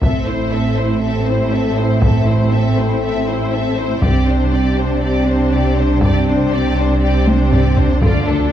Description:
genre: cinematic, epic orchestral film score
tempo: 120 BPM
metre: 4/4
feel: straight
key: A minor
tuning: A4 = 439 Hz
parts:
  - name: rich symphonic violin section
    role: melody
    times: 0.0-8.5 s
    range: A4 to E5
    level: -25 LUFS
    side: left 3 dB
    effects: none
  - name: warm symphonic violin section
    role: second line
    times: 0.0-8.5 s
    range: C4 to C5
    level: -26 LUFS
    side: left 3 dB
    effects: none
  - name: warm symphonic viola section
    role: accompaniment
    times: 0.0-8.5 s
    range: A3 to E4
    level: -22 LUFS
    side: left 1 dB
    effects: none
  - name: mellow French horn section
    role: sustained chords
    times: 0.0-8.5 s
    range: F3 to D4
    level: -22 LUFS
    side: left 4 dB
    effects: none
  - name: clear symphonic double bass section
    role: bass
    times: 0.0-8.5 s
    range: A1 to D2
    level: -18 LUFS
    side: right 2 dB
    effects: none
  - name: rich symphonic cello section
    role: bass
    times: 0.0-8.5 s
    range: A2 to D3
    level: -20 LUFS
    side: right 3 dB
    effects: none
  - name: taiko ensemble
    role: drums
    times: 0.0-8.5 s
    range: none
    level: -18 LUFS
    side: left 1 dB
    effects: none
room: light reverb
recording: dark, warm production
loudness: -13 LUFS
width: side -10 dB against mid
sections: 0.0-8.5 A section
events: drum fill 7.3-8.0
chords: 0.0 Am; 4.0 Csus2

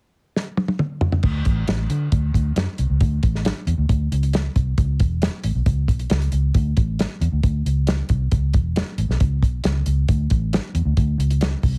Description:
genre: uptempo 1960s-style soul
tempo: 136 BPM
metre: 4/4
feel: straight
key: unclear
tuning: A4 = 440 Hz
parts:
  - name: warm soul drum kit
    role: drums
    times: 0.4-11.7 s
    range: crash cymbal, hi-hat, kick drum, snare drum, toms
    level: -23 LUFS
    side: equal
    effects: none
  - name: vintage muted fingered electric bass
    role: bass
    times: 1.2-11.8 s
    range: E1 to D3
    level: -23 LUFS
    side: equal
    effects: none
room: little or no reverb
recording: heavily compressed radio sound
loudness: -21 LUFS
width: mono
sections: 0.0-1.2 A section; 1.2-3.0 B section; 3.0-11.8 C section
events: drum fill 0.4-1.2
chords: none

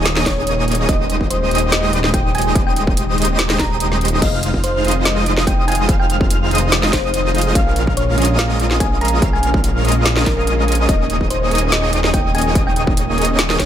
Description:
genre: future bass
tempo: 144 BPM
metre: 4/4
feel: swing 54% on 16ths, half-time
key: F minor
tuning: A4 = 440 Hz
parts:
  - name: ethereal airy pad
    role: sustained chords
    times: 0.0-13.7 s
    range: C3 to G4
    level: -29 LUFS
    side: right 1 dB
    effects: ensemble chorus, built-in reverb, sidechain pumping
  - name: airy dreamy lead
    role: arpeggios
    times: 0.0-13.7 s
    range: Eb6 to F6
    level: -25 LUFS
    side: equal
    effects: chorus, sidechain pumping
  - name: supersaw chords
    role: riff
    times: 0.0-13.7 s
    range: Ab3 to F5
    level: -22 LUFS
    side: right 1 dB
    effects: sidechain pumping
  - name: wide detuned saw bass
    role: bass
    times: 0.0-13.7 s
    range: Eb1 to Bb1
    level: -19 LUFS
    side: equal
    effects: chorus, tube saturation, sidechain pumping
  - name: trap drum kit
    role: drums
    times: 0.1-13.7 s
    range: crash cymbal, hi-hat, snare drum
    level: -20 LUFS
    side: equal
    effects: none
  - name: thumb-piano-like synth pluck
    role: melody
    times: 0.3-13.7 s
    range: Bb4 to Bb5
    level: -24 LUFS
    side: left 1 dB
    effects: chorus, sidechain pumping, ping-pong delay
  - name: electronic kick drum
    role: drums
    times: 0.3-13.7 s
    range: none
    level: -18 LUFS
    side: equal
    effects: distortion
  - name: glassy digital keys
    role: accompaniment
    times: 4.2-13.7 s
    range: Db4 to Ab5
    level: -27 LUFS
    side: right 3 dB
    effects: chorus, sidechain pumping, ping-pong delay
room: digital ambience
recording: none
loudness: -14 LUFS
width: side -10 dB against mid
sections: 0.0-13.7 A section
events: none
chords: 0.0 Eb7sus4; 0.9 Abmaj7/Eb; 4.2 Fm7; 7.6 Bbm7; 10.9 Eb7sus4

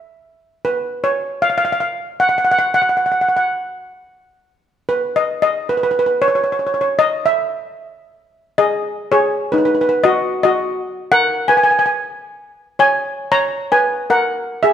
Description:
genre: calypso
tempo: 113 BPM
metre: 4/4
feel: straight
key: G# minor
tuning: A4 = 440 Hz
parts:
  - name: steel pan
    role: solo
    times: 0.6-14.7 s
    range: D#4 to A#5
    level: -14 LUFS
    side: equal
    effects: none
room: moderate recital hall reverb, RT60 1.5 s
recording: close, detailed microphones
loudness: -14 LUFS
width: side -9 dB against mid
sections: 0.0-8.6 A section; 8.6-14.7 B section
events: none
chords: 0.0 N.C.; 8.6 G#5; 12.8 C#5

